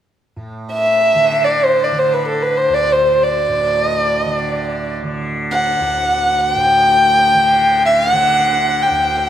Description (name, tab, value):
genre	indian classical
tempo	free time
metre	none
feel	none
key	D raga khamaj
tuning	A4 = 442 Hz
part	tanpura	drone	0.4-9.3 s	D2 to D3	-23 LUFS	right 2 dB	none
part	dark violin	melody	0.7-9.3 s	A4 to G5	-13 LUFS	equal	tape echo
room	moderate recital hall reverb, RT60 1.5 s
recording	dark, warm production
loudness	-12 LUFS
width	side -10 dB against mid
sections	0.4-9.3 A section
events	none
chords	none